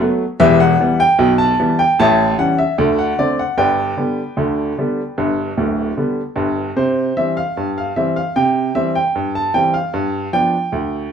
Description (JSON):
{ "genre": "ragtime piano", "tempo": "76 BPM", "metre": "2/4", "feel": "straight", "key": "G major, C major from 6.8 s", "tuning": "A4 = 440 Hz", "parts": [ { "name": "clear upright piano", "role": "solo", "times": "0.0-11.1 s", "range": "D1 to A5", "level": "-14 LUFS", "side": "equal", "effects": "none" } ], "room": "wet club reverb, RT60 0.6 s", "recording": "heard from further back in the room", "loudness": "-14 LUFS", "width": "side -7 dB against mid", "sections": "0.0-6.8 A section; 6.8-11.1 B section", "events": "none", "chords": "0.4 Em; 2.0 A7; 2.8 D5; 3.6 G; 6.8 C; 9.9 G7" }